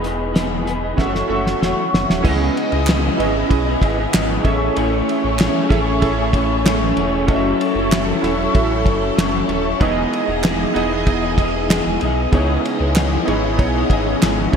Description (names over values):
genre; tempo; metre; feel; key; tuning
indie pop, bedroom pop; 95 BPM; 4/4; straight; unclear; A4 = 443 Hz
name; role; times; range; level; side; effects
electric guitar through a small old amp; accompaniment; 0.0-14.6 s; C#3 to D#5; -20 LUFS; left 3 dB; ensemble chorus, warbly pitch drift
warbly lo-fi synth keys; accompaniment; 0.0-14.6 s; A3 to E5; -22 LUFS; right 5 dB; chorus, cassette tape
sub bass with octave; bass; 0.0-14.6 s; D#1 to C#2; -23 LUFS; equal; none
cloth-damped thuddy drum kit; drums; 0.0-14.6 s; crash cymbal, hi-hat, kick drum, ride cymbal, snare drum; -20 LUFS; equal; gated reverb
phased string machine; sustained chords; 2.2-14.6 s; C#3 to D#5; -25 LUFS; equal; ensemble chorus, phaser
group handclap; percussion; 2.9-14.4 s; none; -29 LUFS; right 4 dB; none
room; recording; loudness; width
moderate lush hall reverb, RT60 1.8 s, small room ambience; bright 1980s-style digital production; -15 LUFS; side -6 dB against mid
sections
0.0-2.2 A section; 2.2-14.6 B section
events
drum fill 1.0-2.2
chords
0.0 Emaj7; 1.0 F#m7; 2.2 C#m9; 4.4 Amaj7; 7.3 F#m7; 9.8 Emaj7; 12.3 C#m9